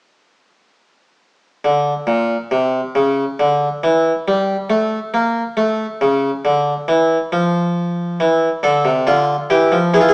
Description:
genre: classical, baroque-style two-part invention for harpsichord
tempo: 69 BPM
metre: 4/4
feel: straight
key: unclear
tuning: A4 = 437 Hz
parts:
  - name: harpsichord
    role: solo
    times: 1.6-10.1 s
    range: Bb2 to A4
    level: -14 LUFS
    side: equal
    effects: none
room: wet stone room reverb, RT60 1.0 s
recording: heard from further back in the room, small speaker sound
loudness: -14 LUFS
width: side -26 dB against mid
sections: 1.2-10.1 A section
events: none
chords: 1.2 N.C.; 8.2 Am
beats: | 1.21 2.09 2.96 3.83 | 4.71 5.58 6.45 7.33 | 8.20 9.07 9.94

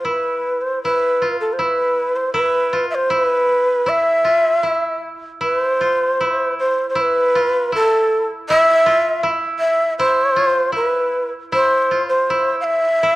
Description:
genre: japanese traditional, Japanese chamber music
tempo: 79 BPM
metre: 2/4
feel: rubato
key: E miyako bushi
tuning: A4 = 440 Hz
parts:
  - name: breathy mellow shakuhachi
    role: melody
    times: 0.0-13.2 s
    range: A4 to F5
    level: -16 LUFS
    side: equal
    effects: none
  - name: koto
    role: second line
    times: 0.0-13.2 s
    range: E4 to F4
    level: -22 LUFS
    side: right 1 dB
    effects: none
room: moderate recital hall reverb, RT60 1.4 s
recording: worn, warbling old tape, cassette tape, warbly pitch drift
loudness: -15 LUFS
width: side -17 dB against mid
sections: 0.0-5.4 A section; 5.4-13.2 B section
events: none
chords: none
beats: 0.04 | 0.83 1.59 | 2.34 3.09 | 3.85 4.62 | 5.40 6.19 | 6.95 7.70 | 8.46 9.21 | 9.96 10.73 | 11.51 12.28 | 13.04

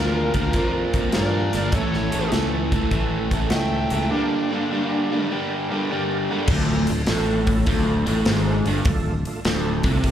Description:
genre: blues rock power trio and southern rock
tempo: 101 BPM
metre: 4/4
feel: swing 67% on 8ths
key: D minor from 6.5 s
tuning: A4 = 440 Hz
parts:
  - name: smooth overdriven lead guitar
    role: melody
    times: 0.0-5.3 s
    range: D4 to G5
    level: -28 LUFS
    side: equal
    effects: slapback echo, digital delay
  - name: bluesy overdriven lead guitar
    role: second line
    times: 0.0-5.3 s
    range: Bb3 to E5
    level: -32 LUFS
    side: right 2 dB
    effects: distortion
  - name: overdriven tonewheel organ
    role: sustained chords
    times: 0.0-10.1 s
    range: A3 to Bb5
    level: -32 LUFS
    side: right 3 dB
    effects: slow rotary speaker, chorus vibrato
  - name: biting overdriven guitar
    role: riff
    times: 0.0-10.1 s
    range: D2 to Bb3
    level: -23 LUFS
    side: equal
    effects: slapback echo
  - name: sustaining fretless electric bass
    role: bass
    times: 0.0-10.1 s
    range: D1 to G2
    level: -24 LUFS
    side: equal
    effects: none
  - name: big rock drum kit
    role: drums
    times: 0.3-10.1 s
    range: crash cymbal, hi-hat, kick drum, snare drum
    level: -25 LUFS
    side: equal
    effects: none
room: light reverb, studio reverb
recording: live gig heard through the venue's PA, club reverb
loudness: -19 LUFS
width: side -10 dB against mid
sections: 0.0-6.5 A section; 6.5-10.1 B section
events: tonewheel organ fill 4.7-6.5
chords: 0.0 Bb; 1.7 A; 4.1 Gm; 6.5 Dm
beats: 0.55 1.15 | 1.74 2.33 2.93 3.52 | 4.11 4.71 5.30 5.89 | 6.49 7.08 7.67 8.26 | 8.85 9.44 10.04

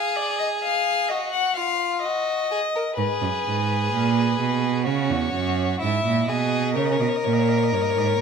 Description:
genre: classical, baroque-style fugue for string quartet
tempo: 64 BPM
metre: 4/4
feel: straight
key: unclear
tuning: A4 = 440 Hz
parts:
  - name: rich violin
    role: melody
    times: 0.0-8.2 s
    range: B4 to F#5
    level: -25 LUFS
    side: left 6 dB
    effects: none
  - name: clear violin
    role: second line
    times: 0.0-8.2 s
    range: E4 to A#4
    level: -26 LUFS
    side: left 1 dB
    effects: none
  - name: clear cello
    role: bass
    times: 3.0-8.2 s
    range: E2 to C#3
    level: -22 LUFS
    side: right 6 dB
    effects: none
room: moderate recital hall reverb, RT60 1.7 s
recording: minimal, uncompressed stereo recording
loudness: -20 LUFS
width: side -6 dB against mid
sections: 0.0-8.2 A section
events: none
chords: 0.0 Ddim/Ab; 1.1 D#m; 3.0 G#m; 4.9 C#m; 6.8 D#7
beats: 0.17 1.10 2.04 | 2.98 3.93 4.87 5.82 | 6.76 7.71

